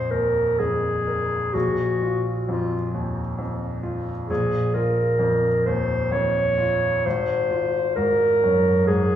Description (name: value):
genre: classical, romantic duo for clarinet and grand piano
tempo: 66 BPM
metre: 3/4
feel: rubato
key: Bb minor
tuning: A4 = 440 Hz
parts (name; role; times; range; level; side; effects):
- warm clarinet; melody; 0.0-9.2 s; F4 to Db5; -21 LUFS; equal; none
- bright grand piano; accompaniment; 0.0-9.2 s; Ab1 to Bb4; -24 LUFS; equal; none
room: wet recital hall reverb, RT60 1.7 s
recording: heard from further back in the room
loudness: -20 LUFS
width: side -10 dB against mid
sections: 0.0-9.2 A section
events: none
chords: 0.0 Bb5; 7.1 Fm/Ab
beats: 0.60 | 1.54 2.47 3.39 | 4.30 5.21 6.12 | 7.05 7.96 8.88